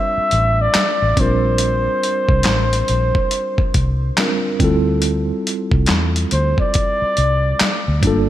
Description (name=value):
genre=R&B, neo-soul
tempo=70 BPM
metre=4/4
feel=swing 62% on 16ths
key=unclear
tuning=A4 = 442 Hz
part: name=mellow flugelhorn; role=melody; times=0.0-8.0 s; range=C5 to E5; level=-19 LUFS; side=equal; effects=ping-pong delay
part: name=mellow tine electric piano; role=accompaniment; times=0.0-8.3 s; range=G3 to Bb4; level=-22 LUFS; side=right 2 dB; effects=medium stereo tremolo
part: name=vintage muted fingered electric bass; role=bass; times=0.2-8.3 s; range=G1 to E2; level=-18 LUFS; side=equal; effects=none
part: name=dusty soul sampler-style drum kit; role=drums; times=0.3-8.3 s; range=handclaps, hi-hat, kick drum, snare drum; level=-19 LUFS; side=equal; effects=overdrive, gated reverb
room=light reverb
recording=bright 1980s-style digital production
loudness=-15 LUFS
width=side -12 dB against mid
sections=0.0-8.3 A section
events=none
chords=0.0 F6; 1.2 Bb69; 4.6 Dm11